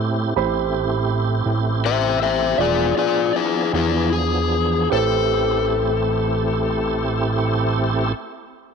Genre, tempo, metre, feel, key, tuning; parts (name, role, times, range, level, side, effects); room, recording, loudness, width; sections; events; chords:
slow blues; 49-56 BPM (dotted quarters); 12/8; straight; A minor; A4 = 440 Hz
warm concert grand piano; accompaniment; 0.0-8.1 s; G4 to B5; -26 LUFS; right 15 dB
tonewheel organ; sustained chords; 0.0-8.1 s; F3 to G#4; -24 LUFS; right 2 dB; slow rotary speaker, overdrive, chorus vibrato
fat analog bass; bass; 0.0-8.1 s; E1 to A2; -23 LUFS; right 3 dB; transformer saturation
overdriven slide guitar; melody; 1.9-8.1 s; E4 to E5; -21 LUFS; left 10 dB
light reverb; 1960s-style stereo with parts hard left and right; -18 LUFS; side -6 dB against mid
0.0-4.9 A section; 4.9-8.7 B section
slowing down 0.0-4.9
0.0 Am7; 2.6 E7b9; 4.9 Am7